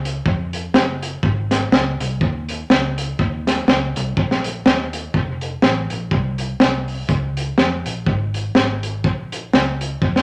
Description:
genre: ska.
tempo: 123 BPM.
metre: 4/4.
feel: swing 57% on 8ths.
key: Bb minor.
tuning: A4 = 438 Hz.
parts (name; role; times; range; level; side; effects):
vintage muted fingered electric bass; bass; 0.0-10.2 s; F1 to F2; -27 LUFS; equal; none.
crunchy breakbeat drum kit; drums; 0.1-10.2 s; hi-hat, kick drum, snare drum; -20 LUFS; equal; dub echo.
room: moderate large studio reverb, RT60 0.8 s.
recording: none.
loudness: -20 LUFS.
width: mono.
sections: 0.0-10.2 A section.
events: none.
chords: none.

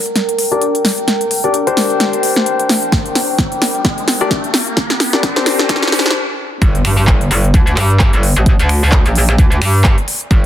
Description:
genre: bass house.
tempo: 130 BPM.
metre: 4/4.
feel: swing 57% on 16ths.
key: G minor.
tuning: A4 = 435 Hz.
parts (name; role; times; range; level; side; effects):
riser and impact; sound effects; 1.3-8.5 s; none; -24 LUFS; equal; none.
warbly tape-like pad; texture; 0.0-10.5 s; Bb4 to G5; -21 LUFS; equal; chorus, built-in reverb, sidechain pumping.
big-room dance drum kit; drums; 0.1-10.4 s; finger snaps, handclaps, hi-hat, snare drum; -16 LUFS; equal; overdrive.
dark concert grand piano; stabs; 0.5-6.2 s; D4 to D5; -19 LUFS; left 5 dB; sidechain pumping, low-pass filter, dub echo.
electronic kick drum; drums; 2.9-10.4 s; none; -12 LUFS; equal; none.
metallic wobble bass; bass; 6.6-10.5 s; G1 to G2; -12 LUFS; equal; chorus, overdrive, sidechain pumping.
room: light reverb.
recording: dense, heavily limited modern master, high-pass filter.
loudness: -11 LUFS.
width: side -11 dB against mid.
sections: 0.0-6.6 A section; 6.6-10.5 B section.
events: build-up 0.0-6.6; drum fill 0.0-6.2; filter sweep on grand piano 0.0-6.6; riser 1.3-6.2; stop 6.2-6.6; drop 6.6-10.5; impact 6.6-8.5.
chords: 0.0 Gm; 6.6 G5.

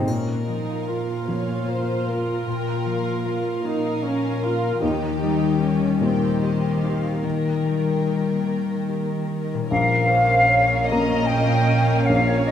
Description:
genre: cinematic, emotional film score for orchestra.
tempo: 50 BPM (dotted quarters).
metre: 6/8.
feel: rubato.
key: Bb dorian.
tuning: A4 = 441 Hz.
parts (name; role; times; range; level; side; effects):
felt-muted upright piano; accompaniment; 0.0-12.5 s; Bb1 to Bb4; -28 LUFS; left 1 dB; none.
warm studio cello section; bass; 0.0-12.5 s; Bb2 to Eb3; -28 LUFS; right 2 dB; none.
dark studio violin section; melody; 0.1-12.5 s; Eb5 to G5; -38 LUFS; left 4 dB; none.
dark studio violin section; second line; 0.1-12.5 s; G4 to Eb5; -29 LUFS; left 3 dB; none.
warm studio viola section; accompaniment; 0.1-12.5 s; Bb3 to Bb4; -28 LUFS; right 2 dB; none.
concert harp; arpeggios; 0.1-12.5 s; Bb2 to Bb4; -26 LUFS; left 7 dB; none.
triangle; percussion; 0.1-1.6 s; none; -48 LUFS; left 2 dB; none.
small flute group; second line; 9.7-12.5 s; Db5 to Bb5; -19 LUFS; equal; none.
warm studio double bass section; bass; 9.7-12.5 s; Bb1; -25 LUFS; right 3 dB; none.
room: wet recital hall reverb, RT60 1.4 s.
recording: none.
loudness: -19 LUFS.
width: side -9 dB against mid.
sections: 0.1-9.7 A section; 9.7-12.5 B section.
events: none.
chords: 0.1 Bbm; 4.8 Eb; 9.7 Bbm.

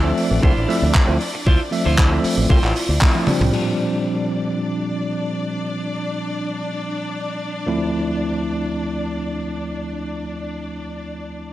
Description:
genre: nu-disco, nu disco.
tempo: 116 BPM.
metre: 4/4.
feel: straight.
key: D minor.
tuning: A4 = 443 Hz.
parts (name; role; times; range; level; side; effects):
bell-like tine electric piano; accompaniment; 0.0-11.5 s; D2 to E5; -23 LUFS; equal; medium stereo tremolo, vintage 12-bit sampler grit, sidechain pumping, analog delay.
clear studio string section; sustained chords; 0.0-11.5 s; D4 to D5; -29 LUFS; left 1 dB; sidechain pumping.
clean electric guitar; riff; 0.0-3.4 s; E4 to C5; -26 LUFS; right 2 dB; wide subtle chorus, analog delay.
fingered electric bass with an envelope filter; bass; 0.0-3.5 s; A1 to D2; -20 LUFS; equal; none.
tight funk drum kit; drums; 0.2-3.6 s; crash cymbal, handclaps, hi-hat, toms; -24 LUFS; equal; none.
electronic kick drum; drums; 0.4-3.1 s; none; -15 LUFS; equal; none.
room: studio ambience.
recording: dry, gritty hardware recording.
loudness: -18 LUFS.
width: side -14 dB against mid.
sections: 0.0-3.5 A section; 3.5-11.5 B section.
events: filter sweep on clean electric guitar 0.0-3.5; band accent 3.0; drum fill 3.1-3.5.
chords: 0.0 Dm9; 3.5 Bb69; 7.7 Dm9.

